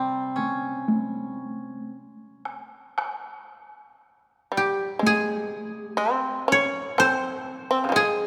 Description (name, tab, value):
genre	japanese traditional, Japanese chamber music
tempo	56-63 BPM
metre	4/4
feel	rubato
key	unclear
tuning	A4 = 440 Hz
part	koto	melody	0.0-8.3 s	G4 to Db5	-25 LUFS	equal	none
part	shamisen	second line	0.0-8.3 s	C3 to Db4	-28 LUFS	equal	none
part	koto	accompaniment	0.0-2.4 s	C3 to Db4	-31 LUFS	equal	none
part	taiko ensemble	percussion	0.4-7.2 s	none	-32 LUFS	equal	none
room	wet church reverb, RT60 2.7 s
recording	none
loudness	-25 LUFS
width	mono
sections	0.0-3.0 A section; 3.0-8.3 B section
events	none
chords	none